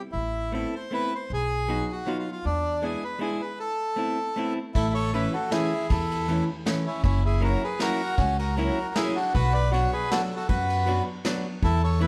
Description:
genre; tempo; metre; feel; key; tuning
musette waltz; 157 BPM; 3/4; swing 54% on 8ths; A minor, A major from 4.7 s; A4 = 441 Hz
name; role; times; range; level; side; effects
bandoneon; melody; 0.1-12.1 s; C#4 to D5; -30 LUFS; equal; none
upright bass; bass; 0.1-12.1 s; F#1 to F#2; -28 LUFS; equal; none
archtop guitar, miked and amplified; accompaniment; 0.5-12.1 s; E3 to F#4; -32 LUFS; equal; none
vintage brush drum kit; drums; 4.8-12.1 s; crash cymbal, kick drum, ride cymbal, snare drum; -33 LUFS; equal; none
room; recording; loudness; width
moderate recital hall reverb, RT60 1.3 s; none; -26 LUFS; mono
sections
0.0-4.7 A section; 4.7-12.1 B section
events
none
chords
0.1 Amadd9; 1.3 B; 2.4 E7; 3.6 Amadd9; 4.7 A; 7.0 F#7; 9.3 Bm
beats
| 0.14 0.53 0.91 | 1.30 1.68 2.06 | 2.44 2.82 3.20 | 3.58 3.97 4.36 | 4.75 5.13 5.51 | 5.90 6.28 6.66 | 7.03 7.41 7.79 | 8.17 8.56 8.95 | 9.34 9.72 10.10 | 10.48 10.87 11.24 | 11.62 12.00

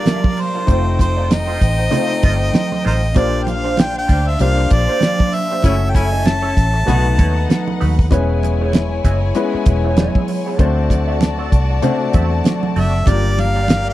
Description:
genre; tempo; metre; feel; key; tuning
lush 1970s-style soul; 97 BPM; 4/4; swing 58% on 16ths; unclear; A4 = 438 Hz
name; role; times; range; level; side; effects
warm harmonica; melody; 0.0-7.8, 12.8-13.9 s; Bb4 to A5; -21 LUFS; equal; none
warm studio violin section; second line; 0.0-13.9 s; Bb3 to A5; -26 LUFS; left 4 dB; none
warm baby grand piano; accompaniment; 0.0-13.9 s; G3 to C#5; -23 LUFS; left 5 dB; none
electric guitar through a small old amp; riff; 0.0-13.7 s; A3 to E5; -26 LUFS; right 5 dB; wah
damped 70s drum kit; drums; 0.1-13.9 s; hi-hat, kick drum, snare drum; -14 LUFS; equal; none
congas; percussion; 0.1-13.9 s; none; -24 LUFS; right 5 dB; none
vintage muted fingered electric bass; bass; 0.7-13.9 s; E1 to E2; -17 LUFS; equal; none
clear horn section; stabs; 5.6-7.1 s; A3 to F#4; -25 LUFS; left 4 dB; none
room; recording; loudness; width
small room ambience; dry, close 1970s-style studio recording; -14 LUFS; side -15 dB against mid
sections
0.0-13.9 A section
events
band accent 5.6-8.1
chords
0.0 Gm7; 0.7 F7; 3.2 Bb69; 5.6 F#m7; 6.9 B7; 8.1 E6; 10.6 D7; 13.1 Gm7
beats
0.06 | 0.68 1.30 1.92 2.54 | 3.16 3.78 4.40 5.02 | 5.64 6.26 6.88 7.50 | 8.12 8.74 9.36 9.97 | 10.59 11.21 11.83 12.45 | 13.07 13.69

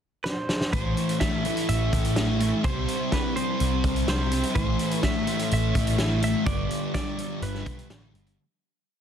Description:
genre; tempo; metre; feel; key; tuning
rock, shoegaze and dream pop; 125 BPM; 4/4; straight; A minor; A4 = 440 Hz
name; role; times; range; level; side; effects
direct-recorded clean electric guitar; melody; 0.2-7.9 s; B4 to E5; -33 LUFS; right 3 dB; analog delay
loose indie drum kit; drums; 0.3-8.4 s; hi-hat, kick drum, snare drum; -29 LUFS; equal; none
thick fuzz guitar; riff; 0.7-8.4 s; G2 to C4; -26 LUFS; left 1 dB; distortion, ensemble chorus
vintage muted picked electric bass; bass; 0.7-8.4 s; G1 to C2; -26 LUFS; equal; none
room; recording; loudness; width
small room reverb; dense, heavily limited modern master; -23 LUFS; side -8 dB against mid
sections
0.0-0.7 pickup bar; 0.7-8.4 verse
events
drum fill 0.3-0.7; fade-out 6.5-8.4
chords
0.0 N.C.; 0.7 Am; 2.6 C5; 4.6 Am; 6.5 G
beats
0.25 | 0.73 1.21 1.69 2.17 | 2.65 3.13 3.60 4.08 | 4.56 5.04 5.52 5.99 | 6.47 6.95 7.43 7.91

